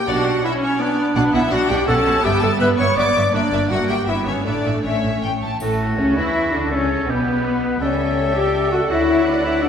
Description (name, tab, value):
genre	classical, dramatic, fast romantic movement for symphony orchestra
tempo	165 BPM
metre	3/4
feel	rubato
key	D major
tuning	A4 = 440 Hz
part	clear symphonic violin section	second line	0.0-9.7 s	A3 to D6	-26 LUFS	left 2 dB	none
part	mellow clarinet	second line	0.0-9.7 s	A3 to D5	-22 LUFS	equal	none
part	warm symphonic viola section	accompaniment	0.0-9.7 s	A3 to A4	-25 LUFS	right 1 dB	none
part	rich studio violin section	melody	0.1-9.7 s	A3 to A5	-28 LUFS	left 4 dB	none
part	clear symphonic cello section	bass	0.1-9.7 s	G2 to G4	-26 LUFS	right 2 dB	none
part	warm studio double bass section	bass	0.1-9.7 s	G1 to E2	-26 LUFS	right 2 dB	none
part	clear oboe	second line	5.6-9.7 s	F#4 to B4	-25 LUFS	equal	none
part	mellow flute section	second line	5.6-9.7 s	A4 to G5	-28 LUFS	equal	none
part	mellow bassoon	accompaniment	5.6-9.7 s	A2 to G3	-27 LUFS	right 2 dB	none
part	mellow French horn section	sustained chords	5.6-9.7 s	A3 to G4	-20 LUFS	left 4 dB	none
part	triangle	percussion	5.6-6.3 s	none	-45 LUFS	left 2 dB	none
room	wet scoring stage reverb, RT60 1.7 s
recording	heard from further back in the room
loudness	-16 LUFS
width	side -8 dB against mid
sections	0.0-5.6 A section; 5.6-9.7 B section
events	none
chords	0.1 Bm; 2.2 Em7/G; 4.5 A; 5.6 D/A; 6.7 A9; 7.8 A7/C#; 8.9 D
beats	| 0.09 0.45 0.80 | 1.16 1.52 1.88 | 2.24 2.61 2.97 | 3.34 3.71 4.08 | 4.46 4.84 5.23 | 5.61 5.98 6.35 | 6.72 7.09 7.45 | 7.81 8.17 8.53 | 8.89 9.25 9.61